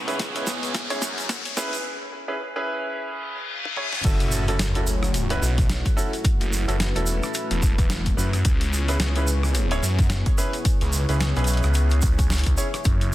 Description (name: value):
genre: glitch hop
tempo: 109 BPM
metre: 4/4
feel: swing 58% on 16ths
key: F# minor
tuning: A4 = 440 Hz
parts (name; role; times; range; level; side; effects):
- dark analog pad; sustained chords; 0.0-13.1 s; A3 to C#5; -33 LUFS; left 1 dB; chorus, sidechain pumping
- phased detuned saw bass; bass; 0.0-13.1 s; E1 to F#2; -23 LUFS; equal; phaser, tube saturation, high-pass filter
- riser, reverse cymbal and sub drop; sound effects; 0.0-6.2 s; none; -31 LUFS; left 2 dB; none
- clear concert grand piano; stabs; 0.1-12.7 s; C#4 to C#5; -30 LUFS; right 1 dB; sidechain pumping, tape echo
- boom bap sampler-style drum kit; drums; 0.1-13.1 s; crash cymbal, hi-hat, rim click, snare drum, toms; -30 LUFS; left 1 dB; none
- egg shaker; percussion; 0.1-13.1 s; none; -33 LUFS; right 3 dB; none
- electronic kick drum; drums; 0.2-13.0 s; none; -22 LUFS; equal; high-pass filter on kick
room: light reverb, digital ambience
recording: dense, heavily limited modern master, high-pass filter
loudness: -21 LUFS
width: side -15 dB against mid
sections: 0.0-4.0 A section; 4.0-13.1 B section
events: build-up 0.0-4.0; drum fill 0.0-1.8, 3.6-4.0; riser 0.0-1.8; break 1.8-4.0; reverse cymbal 3.2-4.0; drop 4.0-13.1; impact 4.0-6.2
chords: 0.0 C#m7; 4.0 F#m7; 8.4 C#m7